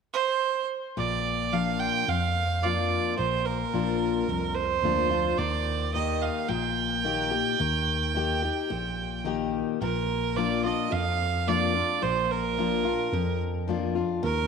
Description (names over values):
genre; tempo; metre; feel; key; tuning
honky-tonk and classic country; 109 BPM; 4/4; straight; Bb major; A4 = 440 Hz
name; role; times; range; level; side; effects
bright fiddle; melody; 0.1-14.5 s; Bb4 to G5; -27 LUFS; right 9 dB; slapback echo
picked steel-string acoustic guitar; accompaniment; 1.0-14.5 s; F2 to G4; -29 LUFS; left 8 dB; none
tine electric piano; bass; 1.0-14.5 s; Bb1 to F2; -32 LUFS; equal; medium stereo tremolo
room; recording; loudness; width
moderate echo chamber reverb, RT60 2.4 s; 1960s-style stereo with parts hard left and right; -24 LUFS; side -6 dB against mid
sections
1.0-9.8 A section; 9.8-14.5 B section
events
none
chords
0.0 N.C.; 1.0 Bb; 5.4 Eb; 9.8 Bb